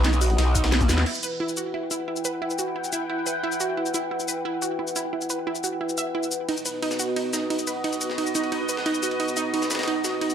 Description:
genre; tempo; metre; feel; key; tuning
dark technical drum and bass; 177 BPM; 4/4; straight; E harmonic minor; A4 = 444 Hz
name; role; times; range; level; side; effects
sweeping resonant pad; sustained chords; 0.0-10.3 s; B3 to G5; -29 LUFS; left 1 dB; chorus, vintage 12-bit sampler grit, sidechain pumping
wide unison pluck; arpeggios; 0.0-10.3 s; D#4 to E5; -28 LUFS; right 4 dB; sidechain pumping, tape echo
growl bass; bass; 0.0-1.0 s; B1 to D#2; -21 LUFS; equal; chorus, tube saturation, sidechain pumping
breakbeat sampler-style drum kit; drums; 0.0-1.1, 6.5-10.3 s; ride cymbal, snare drum; -33 LUFS; equal; high-pass filter on cymbals, high-pass filter on snare, high-pass filter on room
drum and bass drum kit; drums; 0.0-10.3 s; crash cymbal, hi-hat, shaker, snare drum, toms; -28 LUFS; left 2 dB; none
electronic kick drum; drums; 0.6-0.9 s; none; -25 LUFS; equal; none
room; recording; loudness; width
moderate digital room reverb, RT60 1.0 s, digital ambience; none; -23 LUFS; side -8 dB against mid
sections
0.0-1.1 A section; 1.1-10.3 B section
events
drop 0.0-1.1; drum fill 0.8; band accent 1.0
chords
0.0 B; 1.1 Em; 6.5 B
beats
0.04 0.38 0.72 | 1.06 1.40 1.74 2.08 | 2.42 2.76 3.10 3.44 | 3.77 4.11 4.45 4.79 | 5.13 5.47 5.81 6.15 | 6.49 6.83 7.16 7.50 | 7.84 8.18 8.52 8.86 | 9.20 9.54 9.88 10.21

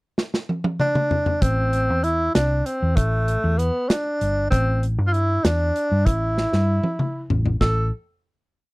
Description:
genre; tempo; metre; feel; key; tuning
progressive instrumental, band music in an uneven meter; 194 BPM (eighths); 5/8; straight; A minor; A4 = 440 Hz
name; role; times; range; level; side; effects
modern studio drum kit; drums; 0.2-7.8 s; hi-hat, kick drum, snare drum, toms; -22 LUFS; equal; none
breathy tenor saxophone; melody; 0.8-7.9 s; A3 to A4; -22 LUFS; equal; none
hollow-body short-scale fingered electric bass; bass; 1.4-7.9 s; G1 to G2; -21 LUFS; equal; none
room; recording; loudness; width
little or no reverb; dry, close 1970s-style studio recording; -19 LUFS; side -24 dB against mid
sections
0.0-1.4 pickup bar; 1.4-7.6 A section; 7.6-8.7 final note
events
drum fill 0.2-1.4, 6.4-7.6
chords
0.0 N.C.; 1.4 Am7; 7.6 N.C.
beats
0.18 0.49 0.80 1.11 | 1.42 1.73 2.04 2.35 2.66 | 2.97 3.28 3.59 3.90 4.21 | 4.52 4.83 5.14 5.45 5.76 | 6.07 6.38 6.68 6.99 7.30 | 7.61

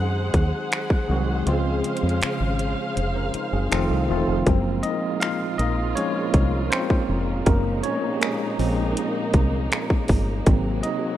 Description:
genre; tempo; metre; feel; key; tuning
contemporary R&B; 80 BPM; 4/4; straight; unclear; A4 = 442 Hz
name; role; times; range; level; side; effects
bell-like tine electric piano; accompaniment; 0.0-11.2 s; Db3 to F5; -26 LUFS; equal; medium stereo tremolo
warm studio string section; sustained chords; 0.0-11.2 s; Bb2 to Gb5; -29 LUFS; equal; none
deep dub fingered electric bass; bass; 0.0-10.8 s; Fb1 to Gb2; -24 LUFS; equal; none
trap drum kit; drums; 0.3-11.0 s; finger snaps, hi-hat, kick drum; -21 LUFS; equal; vintage 12-bit sampler grit
room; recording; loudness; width
digital ambience; rough home demo mix; -20 LUFS; side -12 dB against mid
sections
0.0-4.5 A section; 4.5-11.2 B section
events
kick muted 1.5-4.5; tine electric piano solo 4.5-11.2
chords
0.0 Ab7; 1.5 Dbmaj7; 3.7 F7; 4.5 Gbmaj9#11 (rootless); 10.5 Ab9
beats
0.72 | 1.47 2.22 2.97 3.72 | 4.47 5.22 5.97 6.72 | 7.47 8.22 8.97 9.72 | 10.47

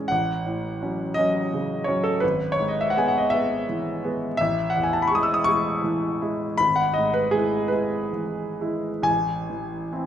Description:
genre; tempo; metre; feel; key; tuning
classical, romantic nocturne for solo piano; 41-58 BPM (dotted quarters); 12/8; rubato; E major; A4 = 441 Hz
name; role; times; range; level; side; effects
clear concert grand piano; solo; 0.0-10.1 s; G#1 to E6; -21 LUFS; equal; none
room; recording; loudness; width
moderate scoring stage reverb, RT60 1.8 s; recorded in a church or concert hall; -21 LUFS; side -10 dB against mid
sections
0.0-10.1 A section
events
none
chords
0.1 F#m/A; 2.2 E/G#; 4.4 Amaj7; 6.6 E/G#; 9.1 Am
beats
| 0.11 1.17 2.23 3.31 | 4.40 5.47 6.60 7.72 | 9.07

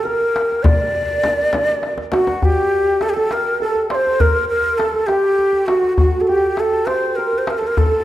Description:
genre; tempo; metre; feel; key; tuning
Persian modal ensemble; 67 BPM (dotted quarters); 6/8; straight; unclear; A4 = 440 Hz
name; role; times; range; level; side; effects
breathy ney; melody; 0.0-8.0 s; F#4 to D5; -17 LUFS; equal; none
santur; second line; 0.0-8.0 s; F#4 to D5; -22 LUFS; right 2 dB; none
tombak; percussion; 0.1-7.9 s; none; -21 LUFS; left 2 dB; none
frame drum; percussion; 0.6-2.3 s; none; -22 LUFS; left 2 dB; none
room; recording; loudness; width
moderate recital hall reverb, RT60 1.5 s; none; -15 LUFS; side -14 dB against mid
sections
0.0-2.4 A section; 2.4-8.0 A section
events
drum fill 1.8-2.4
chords
none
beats
| 0.64 1.53 | 2.42 3.31 | 4.21 5.09 | 5.99 6.88 | 7.76

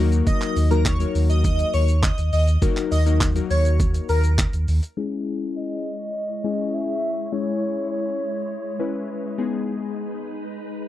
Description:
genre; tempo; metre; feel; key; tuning
dance-pop; 102 BPM; 4/4; straight; C# dorian; A4 = 440 Hz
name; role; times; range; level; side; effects
glassy digital keys; accompaniment; 0.0-10.3 s; F#3 to B4; -26 LUFS; left 6 dB; chorus, sidechain pumping, low-pass filter
sub bass with octave; bass; 0.0-4.8 s; D#2; -19 LUFS; right 1 dB; sidechain pumping
boom bap sampler-style drum kit; drums; 0.1-5.0 s; handclaps, hi-hat, kick drum, shaker; -24 LUFS; right 1 dB; overdrive
airy dreamy lead; melody; 0.3-4.2 s; A#4 to D#5; -27 LUFS; equal; chorus, sidechain pumping, slapback echo
soft string machine; sustained chords; 5.0-10.9 s; G#3 to C#5; -32 LUFS; right 1 dB; ensemble chorus, sidechain pumping, low-pass filter
hollow clarinet-like synth lead; melody; 5.6-9.3 s; C#5 to E5; -28 LUFS; equal; chorus, low-pass filter, slapback echo
room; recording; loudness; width
little or no reverb; dry, close 1970s-style studio recording; -20 LUFS; side -13 dB against mid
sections
0.0-5.0 A section; 5.0-10.9 B section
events
drop 0.0-5.0; filter sweep 5.0-10.9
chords
0.0 D#m; 5.0 C#m; 9.4 G#m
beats
| 0.27 0.86 1.44 2.03 | 2.62 3.21 3.80 4.38 | 4.97 5.56 6.15 6.74 | 7.33 7.92 8.50 9.09 | 9.68 10.27 10.86

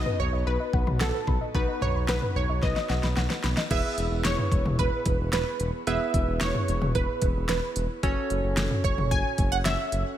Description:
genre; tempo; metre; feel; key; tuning
synth-pop; 111 BPM; 4/4; straight; E major; A4 = 440 Hz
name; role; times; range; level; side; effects
funky polysynth comp; melody; 0.0-10.0 s; A4 to G#5; -30 LUFS; right 2 dB; chorus, ping-pong delay, shimmer reverb
warm analog keys; accompaniment; 0.0-10.2 s; B3 to C#5; -33 LUFS; right 1 dB; chorus, shimmer reverb
soft round pluck; arpeggios; 0.0-3.7 s; B4 to B5; -37 LUFS; left 6 dB; chorus, ping-pong delay, shimmer reverb
smooth synth bass; bass; 0.0-10.0 s; E1 to B1; -29 LUFS; equal; none
pop drum kit; drums; 0.1-10.0 s; crash cymbal, hi-hat, kick drum, snare drum, toms; -28 LUFS; equal; none
room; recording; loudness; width
light reverb, digital ambience; none; -24 LUFS; side -11 dB against mid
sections
0.0-3.7 A section; 3.7-10.2 B section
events
drum fill 2.6-3.7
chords
0.0 B; 3.7 E; 8.0 F#m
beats
0.47 1.01 | 1.55 2.09 2.63 3.17 | 3.71 4.25 4.79 5.33 | 5.87 6.41 6.95 7.49 | 8.03 8.57 9.11 9.65

